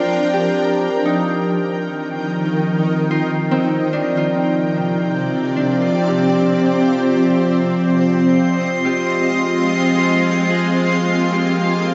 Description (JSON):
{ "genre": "ambient", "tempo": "73 BPM", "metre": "4/4", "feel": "straight", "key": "unclear", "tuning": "A4 = 441 Hz", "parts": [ { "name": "shimmering ambient pad", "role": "sustained chords", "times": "0.0-11.9 s", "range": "C3 to G5", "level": "-21 LUFS", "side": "equal", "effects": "chorus, built-in reverb" }, { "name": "Celtic harp", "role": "arpeggios", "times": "0.0-11.9 s", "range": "C4 to Ab4", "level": "-25 LUFS", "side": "equal", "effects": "diffuse ambient delay" }, { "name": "analog drone", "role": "drone", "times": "0.0-11.9 s", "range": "F3 to C4", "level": "-22 LUFS", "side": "equal", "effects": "chorus" }, { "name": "drifting glass-harmonics texture", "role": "texture", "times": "7.7-11.9 s", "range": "C6", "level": "-24 LUFS", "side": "equal", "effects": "chorus, built-in reverb" } ], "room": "wet lush hall reverb, RT60 2.8 s", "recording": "nothing above 7.8 kHz", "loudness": "-17 LUFS", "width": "mono", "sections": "0.6-11.9 A section", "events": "fade-out on harp 0.6-11.9", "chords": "0.0 Gm7/F; 0.6 Eb; 3.9 Csus2; 7.2 Fm7; 10.5 Bbadd9", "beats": "| 0.64 1.46 2.28 3.10 | 3.92 4.75 5.57 6.39 | 7.21 8.04 8.86 9.68 | 10.50 11.32" }